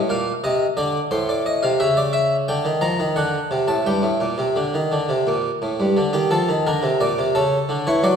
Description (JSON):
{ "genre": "classical, baroque-style two-part invention for harpsichord", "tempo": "87 BPM", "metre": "3/4", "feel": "straight", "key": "G minor", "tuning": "A4 = 440 Hz", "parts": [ { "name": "harpsichord", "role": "solo", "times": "0.0-8.2 s", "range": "G2 to Bb5", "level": "-18 LUFS", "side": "equal", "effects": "none" } ], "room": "wet recital hall reverb, RT60 1.4 s", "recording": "heard from further back in the room", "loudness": "-18 LUFS", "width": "side -7 dB against mid", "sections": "0.0-6.0 A section; 6.0-8.2 B section", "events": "none", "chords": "0.0 Ebmaj7(no3); 1.1 Adim; 1.8 C#m; 2.5 Gm/D; 3.2 D7; 3.9 Gm; 6.0 Gm/D; 7.4 A/C#", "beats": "0.43 1.11 | 1.80 2.48 3.17 | 3.87 4.57 5.28 | 5.97 6.67 7.36 | 8.05" }